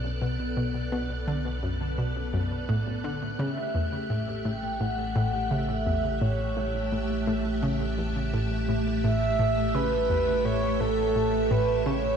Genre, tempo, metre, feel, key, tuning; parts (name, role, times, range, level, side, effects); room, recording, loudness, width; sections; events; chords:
ambient, sequencer-driven space music; 85 BPM; 4/4; straight; A4 = 440 Hz
string machine, full ensemble; sustained chords; 0.0-12.2 s; A3 to E5; -31 LUFS; equal; ensemble chorus
analog pluck; riff; 0.0-12.1 s; E2 to D3; -29 LUFS; left 1 dB; chorus, cassette tape, tape echo
round analog bass; bass; 0.0-12.2 s; A1 to B1; -33 LUFS; left 1 dB
wind-like tuned noise texture; texture; 0.0-12.2 s; F#6; -41 LUFS; right 1 dB; built-in reverb
mellow horn-like synth lead; melody; 3.4-12.2 s; A4 to G5; -28 LUFS; right 3 dB; chorus, tape echo
wet echo chamber reverb, RT60 2.3 s; echo-heavy mix; -25 LUFS; side -7 dB against mid
0.0-12.2 A section
fade-in on string machine 0.0-12.2
0.0 Bm7; 3.4 A7